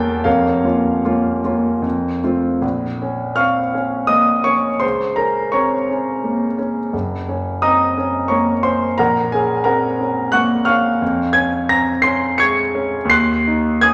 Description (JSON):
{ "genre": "classical, romantic character piece for solo piano", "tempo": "75-91 BPM", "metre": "3/4", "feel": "rubato", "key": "Bb minor", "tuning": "A4 = 440 Hz", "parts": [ { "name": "warm concert grand piano", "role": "solo", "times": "0.0-13.9 s", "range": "F1 to Db7", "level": "-17 LUFS", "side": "equal", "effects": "none" } ], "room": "wet recital hall reverb, RT60 1.6 s", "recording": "none", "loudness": "-18 LUFS", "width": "mono", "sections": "0.0-2.6 A section; 2.6-13.9 B section", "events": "none", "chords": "0.3 Bbm/F; 1.8 F; 2.6 Bbm; 4.8 Bbm/Db; 6.9 Gb; 9.0 Gb/Bb; 11.0 Db/F; 13.1 Cdim/Eb", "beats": "| 0.26 1.05 1.84 | 2.63 3.38 4.10 | 4.83 5.53 6.24 | 6.93 7.62 8.29 | 8.98 9.65 10.33 | 11.02 11.69 12.40 | 13.12 13.84" }